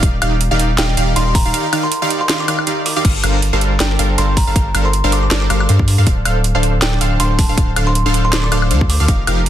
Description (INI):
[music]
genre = future bass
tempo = 159 BPM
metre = 4/4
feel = swing 56% on 16ths, half-time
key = unclear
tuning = A4 = 440 Hz
[part]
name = wide unison pluck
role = arpeggios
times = 0.0-9.4 s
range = D5 to F5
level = -26 LUFS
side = right 1 dB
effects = sidechain pumping
[part]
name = supersaw stab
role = riff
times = 0.0-9.4 s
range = D3 to F5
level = -19 LUFS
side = right 1 dB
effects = sidechain pumping
[part]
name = saturated sub bass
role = bass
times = 0.0-9.5 s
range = D1 to G2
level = -16 LUFS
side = equal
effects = sidechain pumping
[part]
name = electronic kick drum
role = drums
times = 0.0-9.2 s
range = none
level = -15 LUFS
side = equal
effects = none
[part]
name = trap drum kit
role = drums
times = 0.0-9.5 s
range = crash cymbal, hi-hat, snare drum, woodblock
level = -20 LUFS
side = equal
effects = none
[part]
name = kalimba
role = melody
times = 0.8-9.1 s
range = G5 to D6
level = -24 LUFS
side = equal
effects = sidechain pumping, digital delay
[sound]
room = little or no reverb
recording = dense, heavily limited modern master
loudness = -12 LUFS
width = side -11 dB against mid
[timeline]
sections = 0.0-9.5 A section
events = none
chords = 0.0 Ebmaj9; 3.0 Gm11; 6.1 Dm7